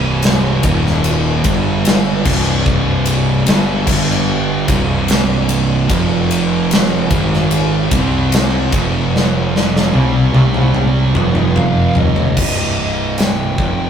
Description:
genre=stoner and doom metal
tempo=74 BPM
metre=4/4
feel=straight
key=C minor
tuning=A4 = 440 Hz
part: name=thick fuzz guitar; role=riff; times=0.0-13.9 s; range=C2 to C4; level=-21 LUFS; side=left 3 dB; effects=distortion
part: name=thick fuzz guitar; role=riff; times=0.0-13.9 s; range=C2 to C4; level=-19 LUFS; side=right 6 dB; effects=distortion
part: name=thick fuzz guitar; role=riff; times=0.0-12.4 s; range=C2 to C4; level=-20 LUFS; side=equal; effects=distortion
part: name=fuzz fingered electric bass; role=bass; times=0.0-13.9 s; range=C1 to C2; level=-22 LUFS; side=left 1 dB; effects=overdrive
part: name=big rock drum kit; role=drums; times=0.2-13.8 s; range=crash cymbal, hi-hat, kick drum, ride cymbal, snare drum, toms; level=-16 LUFS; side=left 1 dB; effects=none
part: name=fuzz lead guitar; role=melody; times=11.6-13.9 s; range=Eb5 to G5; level=-23 LUFS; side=right 1 dB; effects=distortion
room=little or no reverb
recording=rough rehearsal-room recording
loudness=-12 LUFS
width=side -8 dB against mid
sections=0.0-12.4 A section; 12.4-13.9 B section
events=drum fill 9.1-12.4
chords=0.0 C5; 0.6 Eb5; 1.4 G5; 2.3 C5; 3.9 G5; 4.7 C5; 5.9 F5; 7.1 Ab5; 7.9 C5; 8.7 F5; 10.3 C5; 11.2 F5; 12.4 Cm

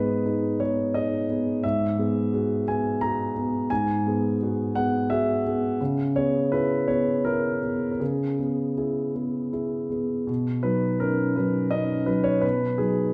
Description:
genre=neoclassical minimalist piano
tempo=78-89 BPM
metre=3/4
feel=rubato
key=B major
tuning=A4 = 441 Hz
part: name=warm concert grand piano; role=solo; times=0.0-13.1 s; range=G#2 to A#5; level=-25 LUFS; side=equal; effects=none
room=wet recital hall reverb, RT60 1.3 s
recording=recorded in a church or concert hall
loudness=-25 LUFS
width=mono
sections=0.0-10.3 A section; 10.3-13.1 A section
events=none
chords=0.0 G#m; 1.6 Eadd9/G#; 5.8 C#m7; 10.3 Badd9

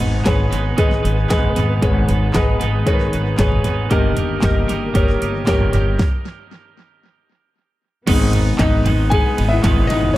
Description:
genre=piano-driven pop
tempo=115 BPM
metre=4/4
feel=straight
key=G# harmonic minor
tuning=A4 = 443 Hz
part: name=warm grand piano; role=accompaniment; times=0.0-10.2 s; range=G2 to G#5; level=-21 LUFS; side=left 3 dB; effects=none
part: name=warm symphonic string section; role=sustained chords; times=0.0-10.2 s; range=B2 to B3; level=-27 LUFS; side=left 1 dB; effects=none
part: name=twelve-string electric guitar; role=riff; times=0.0-10.2 s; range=G#2 to B4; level=-26 LUFS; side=right 7 dB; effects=tape echo
part: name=upright bass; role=bass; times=0.0-10.1 s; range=G1 to G#1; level=-19 LUFS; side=equal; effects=none
part: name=pop drum kit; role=drums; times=0.0-10.2 s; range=crash cymbal, handclaps, hi-hat, kick drum, ride cymbal, snare drum, toms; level=-19 LUFS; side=equal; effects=tape echo
room=light reverb, studio reverb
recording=echo-heavy mix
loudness=-14 LUFS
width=side -16 dB against mid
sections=0.0-8.1 A section; 8.1-10.2 B section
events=stop 6.0-8.1; grand piano solo 8.1-10.2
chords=0.0 G#m; 3.9 D#/G; 8.1 G#m

